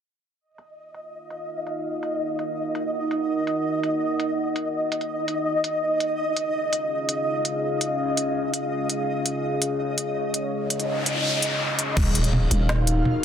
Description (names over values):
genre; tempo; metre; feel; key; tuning
half-time drum and bass; 166 BPM; 4/4; half-time; Eb minor; A4 = 441 Hz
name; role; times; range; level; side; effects
deep dark ambient pad; sustained chords; 1.4-13.2 s; Db4 to Gb5; -26 LUFS; equal; chorus, built-in reverb, vintage 12-bit sampler grit, sidechain pumping
flickering grainy texture; texture; 1.0-13.2 s; Eb5 to F5; -28 LUFS; equal; built-in reverb
organic electronic drum kit; drums; 0.6-13.1 s; crash cymbal, hi-hat, snare drum, toms; -26 LUFS; equal; low-pass filter on hats, low-pass filter on cymbals, low-pass filter on toms, low-pass filter on snare, low-pass filter on room
noise sweep and impact; sound effects; 10.8-13.2 s; none; -27 LUFS; equal; none
growling 808-style bass; bass; 12.0-13.0 s; Eb1; -21 LUFS; equal; none
electronic kick drum; drums; 12.0 s; none; -22 LUFS; equal; none
room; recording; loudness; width
moderate digital room reverb, RT60 1.1 s; dense, heavily limited modern master; -22 LUFS; side -8 dB against mid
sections
0.4-12.0 A section; 12.0-13.2 B section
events
filter sweep on drum 0.4-12.0; noise sweep 10.8-12.0; drop 12.0-13.2; impact 12.0-13.2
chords
0.4 Ebm; 6.2 Db; 12.0 Ebm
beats
| 0.40 0.77 1.13 1.49 | 1.85 2.21 2.57 2.93 | 3.29 3.66 4.02 4.38 | 4.74 5.10 5.46 5.83 | 6.19 6.55 6.91 7.27 | 7.63 7.99 8.36 8.72 | 9.08 9.44 9.80 10.16 | 10.52 10.88 11.25 11.61 | 11.97 12.33 12.69 13.05